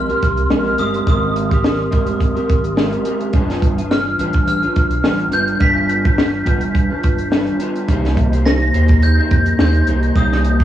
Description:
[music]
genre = indie pop, bedroom pop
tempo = 106 BPM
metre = 4/4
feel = swing 55% on 16ths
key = unclear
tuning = A4 = 440 Hz
[part]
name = glockenspiel with brass mallets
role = melody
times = 0.0-10.6 s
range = Eb6 to B6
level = -21 LUFS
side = equal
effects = ensemble chorus, cassette tape, tape echo, plate reverb
[part]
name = electric guitar through a small old amp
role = accompaniment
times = 0.0-10.6 s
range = C3 to C5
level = -19 LUFS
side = left 1 dB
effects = ensemble chorus, warbly pitch drift, cassette tape, plate reverb
[part]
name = saturated sub bass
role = bass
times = 0.0-10.6 s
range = F1 to F2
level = -19 LUFS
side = right 1 dB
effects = none
[part]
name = compact cocktail drum kit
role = drums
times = 0.1-10.6 s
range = hi-hat, kick drum, snare drum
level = -17 LUFS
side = right 1 dB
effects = vintage 12-bit sampler grit, cassette tape
[sound]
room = moderate booth ambience, RT60 0.2 s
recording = home recording on cassette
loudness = -14 LUFS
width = side -12 dB against mid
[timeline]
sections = 0.0-10.6 A section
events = none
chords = 0.0 Abmaj9; 3.3 G7; 7.9 Cm7

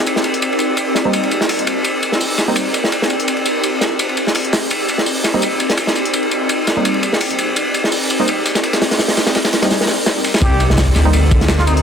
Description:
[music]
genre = drum and bass, jungle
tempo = 168 BPM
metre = 4/4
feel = swing 55% on 16ths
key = C minor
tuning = A4 = 440 Hz
[part]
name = ethereal airy pad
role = sustained chords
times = 0.0-11.8 s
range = C4 to D5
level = -20 LUFS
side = equal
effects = ensemble chorus, built-in reverb
[part]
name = crunchy breakbeat drum kit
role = drums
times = 0.1-11.8 s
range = hi-hat, kick drum, ride cymbal, snare drum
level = -16 LUFS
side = equal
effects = high-pass filter on kick, high-pass filter on cymbals, high-pass filter on hats, high-pass filter on snare, high-pass filter on room
[part]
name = dusty soul sampler-style drum kit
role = drums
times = 0.1-11.8 s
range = hi-hat, snare drum, tambourine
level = -24 LUFS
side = left 1 dB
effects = high-pass filter on perc, high-pass filter on snare, high-pass filter on hats
[part]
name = filtered dub chord stab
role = stabs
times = 1.1-2.6, 5.3-11.1 s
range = G3 to Eb4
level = -22 LUFS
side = right 2 dB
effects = chorus, cassette tape, dub echo
[part]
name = trumpet with plunger mute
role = melody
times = 10.4-11.8 s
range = Eb4 to G4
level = -22 LUFS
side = equal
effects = dub echo
[part]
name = detuned saw bass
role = bass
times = 10.4-11.8 s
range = C2 to D2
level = -14 LUFS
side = equal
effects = none
[part]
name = impact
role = sound effects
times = 10.4-11.8 s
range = none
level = -23 LUFS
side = equal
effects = none
[sound]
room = moderate plate reverb, RT60 1.3 s, small room ambience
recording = dense, heavily limited modern master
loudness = -14 LUFS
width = side -7 dB against mid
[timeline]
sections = 0.0-10.4 A section; 10.4-11.8 B section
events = drop 10.4-11.8; impact 10.4-11.8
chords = 0.0 Cm7

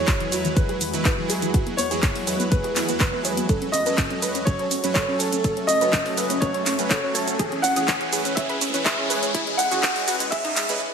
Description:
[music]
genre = progressive house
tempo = 123 BPM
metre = 4/4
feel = straight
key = E major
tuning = A4 = 440 Hz
[part]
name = warm grand piano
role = melody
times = 0.0-10.8 s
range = G#4 to F#5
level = -27 LUFS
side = equal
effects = ping-pong delay
[part]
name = soft round pluck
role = second line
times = 0.0-10.8 s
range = G#4 to F#5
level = -33 LUFS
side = right 2 dB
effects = none
[part]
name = shimmering ambient pad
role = sustained chords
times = 0.0-10.8 s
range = C#2 to C#5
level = -32 LUFS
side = equal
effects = chorus, built-in reverb, sidechain pumping
[part]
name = tight sequenced synth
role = arpeggios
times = 0.0-10.8 s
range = E3 to C#5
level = -29 LUFS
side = equal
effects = chorus, cassette tape, sidechain pumping, ping-pong delay
[part]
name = soft supersaw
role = stabs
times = 0.0-10.8 s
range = E3 to B4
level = -28 LUFS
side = right 2 dB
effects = sidechain pumping
[part]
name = deep house drum kit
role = drums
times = 0.1-10.8 s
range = handclaps, hi-hat, shaker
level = -25 LUFS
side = right 1 dB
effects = none
[part]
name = electronic kick drum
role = drums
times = 0.1-10.4 s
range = none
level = -23 LUFS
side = equal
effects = none
[part]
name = riser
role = sound effects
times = 5.5-10.8 s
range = none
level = -31 LUFS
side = left 1 dB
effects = none
[sound]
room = wet digital room reverb, RT60 1.1 s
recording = high-pass filter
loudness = -20 LUFS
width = side -6 dB against mid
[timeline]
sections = 0.0-10.9 A section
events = build-up 0.0-10.9; filter sweep on synth arpeggio sound 0.0-10.9; filter sweep on ambient pad 0.0-10.9; filter sweep 0.0-10.9; riser 5.5-10.8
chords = 0.0 Eadd9; 3.5 F#m; 7.4 C#m

